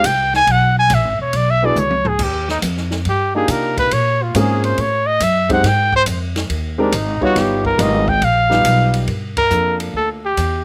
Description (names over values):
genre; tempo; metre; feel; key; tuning
jazz, small-group swing and bop; 139 BPM; 4/4; swing 68% on 8ths; unclear; A4 = 441 Hz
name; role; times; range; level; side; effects
breathy trumpet; melody; 0.0-10.6 s; D4 to Ab5; -18 LUFS; equal; slapback echo
warm grand piano; accompaniment; 0.0-10.2 s; G3 to Db5; -22 LUFS; equal; slapback echo
upright bass; bass; 0.0-10.6 s; E1 to C3; -22 LUFS; equal; none
open jazz drum kit; drums; 0.0-10.5 s; crash cymbal, hi-hat, kick drum, ride cymbal, snare drum, toms; -28 LUFS; equal; none
room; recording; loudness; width
little or no reverb; recorded outdoors, with no room sound; -16 LUFS; mono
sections
0.0-9.1 A section; 9.1-10.6 B section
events
trumpet solo 0.0-9.1; drum fill 1.8-2.2; band accent 9.3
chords
0.5 E; 2.2 Ebmaj9; 3.9 Bbm9; 4.8 F#m13; 5.6 Abmaj7(no3); 7.4 G7alt; 9.1 Gm7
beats
0.04 | 0.47 0.90 1.33 1.76 | 2.19 2.62 3.05 3.48 | 3.91 4.34 4.77 5.20 | 5.63 6.06 6.49 6.92 | 7.35 7.79 8.21 8.65 | 9.08 9.51 9.94 10.37